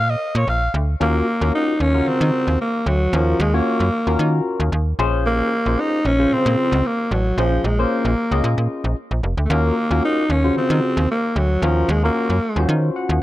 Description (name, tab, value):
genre	early-eighties boogie funk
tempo	113 BPM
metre	4/4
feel	straight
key	Eb dorian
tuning	A4 = 436 Hz
part	breathy alto saxophone	melody	0.0-12.8 s	F3 to F5	-20 LUFS	equal	none
part	slap-like FM bass	bass	0.0-13.2 s	F1 to Eb3	-19 LUFS	equal	none
part	barky tine electric piano	accompaniment	1.0-13.2 s	Db3 to Gb5	-24 LUFS	left 3 dB	overdrive, phaser
room	small room ambience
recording	none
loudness	-16 LUFS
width	side -15 dB against mid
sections	0.0-1.0 A section; 1.0-13.2 B section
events	alto saxophone solo 0.0-1.0; tine electric piano fill 12.7-13.2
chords	0.0 Bb5; 1.0 Ebm9; 5.0 Bbm7; 9.5 Ebm9